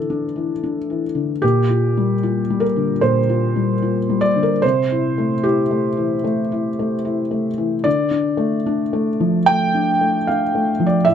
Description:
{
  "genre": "neoclassical minimalist piano",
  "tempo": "75 BPM",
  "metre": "4/4",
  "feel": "rubato",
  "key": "D minor",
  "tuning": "A4 = 441 Hz",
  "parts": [
    { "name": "felt-muted upright piano", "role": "solo", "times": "0.0-11.1 s", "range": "A2 to G5", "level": "-16 LUFS", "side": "left 1 dB", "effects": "none" }
  ],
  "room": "light reverb",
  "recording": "close, detailed microphones",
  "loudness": "-16 LUFS",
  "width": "side -8 dB against mid",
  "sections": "0.0-11.1 A section",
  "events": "none",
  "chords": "0.0 Asus4; 1.4 Gm7/Bb; 4.6 C6; 7.9 Dm"
}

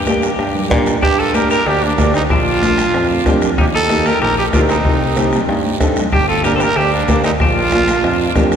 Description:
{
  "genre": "latin, cumbia",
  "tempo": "188 BPM",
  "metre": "4/4",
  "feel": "straight",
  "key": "G minor",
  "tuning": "A4 = 442 Hz",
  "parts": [
    { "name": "clean electric guitar", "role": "second line", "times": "0.0-8.5 s", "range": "Bb3 to A4", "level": "-22 LUFS", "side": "left 3 dB", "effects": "none" },
    { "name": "picked electric bass", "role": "bass", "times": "0.0-8.6 s", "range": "G1 to Bb2", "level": "-20 LUFS", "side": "equal", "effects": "none" },
    { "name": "nylon-string guitar", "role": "accompaniment", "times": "0.1-8.6 s", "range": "Bb3 to A4", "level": "-20 LUFS", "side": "right 1 dB", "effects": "none" },
    { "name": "bombo", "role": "percussion", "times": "0.1-8.6 s", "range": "none", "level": "-20 LUFS", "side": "left 1 dB", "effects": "none" },
    { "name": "congas", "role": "percussion", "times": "0.1-8.5 s", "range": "none", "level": "-23 LUFS", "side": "left 1 dB", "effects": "none" },
    { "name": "guiro", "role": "percussion", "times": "0.1-8.6 s", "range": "none", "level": "-31 LUFS", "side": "right 6 dB", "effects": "none" },
    { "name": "growling trumpet", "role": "melody", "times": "1.0-8.5 s", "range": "D4 to C5", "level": "-17 LUFS", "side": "right 2 dB", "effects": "none" }
  ],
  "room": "wet cathedral reverb, RT60 4.4 s",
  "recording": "recorded in a church or concert hall",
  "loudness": "-12 LUFS",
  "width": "side -8 dB against mid",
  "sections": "0.0-1.0 A section; 1.0-8.6 B section",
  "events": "clean electric guitar solo 0.0-1.0; drum fill 0.1-1.0, 5.5-6.1",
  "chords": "0.0 Gm; 2.3 Bb; 3.6 Eb; 4.9 Cm; 6.1 Gm; 7.4 Bb"
}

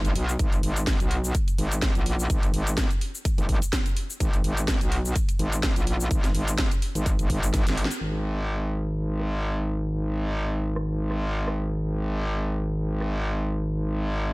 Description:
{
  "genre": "bass house",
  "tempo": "126 BPM",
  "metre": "4/4",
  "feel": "swing 55% on 16ths",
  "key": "G# minor",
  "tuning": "A4 = 441 Hz",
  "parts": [
    { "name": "metallic wobble bass", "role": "bass", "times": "0.0-14.3 s", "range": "G#1 to B1", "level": "-26 LUFS", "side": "equal", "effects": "distortion, chorus, sidechain pumping" },
    { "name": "garage drum kit", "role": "drums", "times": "0.0-13.1 s", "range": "cabasa, crash cymbal, hi-hat, rim click, snare drum", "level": "-31 LUFS", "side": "equal", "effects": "overdrive, low-pass filter on hats, low-pass filter on perc, low-pass filter on snare, low-pass filter on cymbals" },
    { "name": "electronic kick drum", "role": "drums", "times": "0.4-7.6 s", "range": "none", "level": "-25 LUFS", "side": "equal", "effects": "none" }
  ],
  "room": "digital ambience",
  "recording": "none",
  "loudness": "-23 LUFS",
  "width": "side -23 dB against mid",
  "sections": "0.0-8.0 A section; 8.0-14.3 B section",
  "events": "drum fill 7.5-8.0; band accent 7.9; filter sweep on drum 8.0-14.3",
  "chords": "none"
}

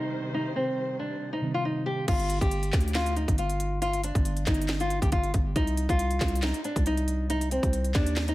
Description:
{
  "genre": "hip hop, trap",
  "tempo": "138 BPM",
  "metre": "4/4",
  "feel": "half-time",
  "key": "C minor",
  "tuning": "A4 = 440 Hz",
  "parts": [
    { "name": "nylon-string guitar", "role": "melody", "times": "0.0-8.3 s", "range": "C4 to G4", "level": "-29 LUFS", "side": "equal", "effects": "low-pass filter, digital delay" },
    { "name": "mellow tine electric piano", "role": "accompaniment", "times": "0.0-2.1 s", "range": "C3 to C4", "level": "-34 LUFS", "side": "equal", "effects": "medium stereo tremolo, low-pass filter" },
    { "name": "dark symphonic string section", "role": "sustained chords", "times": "0.0-2.0 s", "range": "C3 to C5", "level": "-38 LUFS", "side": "equal", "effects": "low-pass filter" },
    { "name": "growling 808-style bass", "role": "bass", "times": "2.1-8.3 s", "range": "G1 to Eb2", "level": "-28 LUFS", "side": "equal", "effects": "none" },
    { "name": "trap drum kit", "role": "drums", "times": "2.1-8.3 s", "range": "crash cymbal, handclaps, hi-hat, kick drum, snare drum", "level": "-28 LUFS", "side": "equal", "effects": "none" }
  ],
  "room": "digital ambience",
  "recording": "none",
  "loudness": "-25 LUFS",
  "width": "side -17 dB against mid",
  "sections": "0.0-2.1 A section; 2.1-8.3 B section",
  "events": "none",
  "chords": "0.0 Cm; 2.1 G5; 5.6 Cm"
}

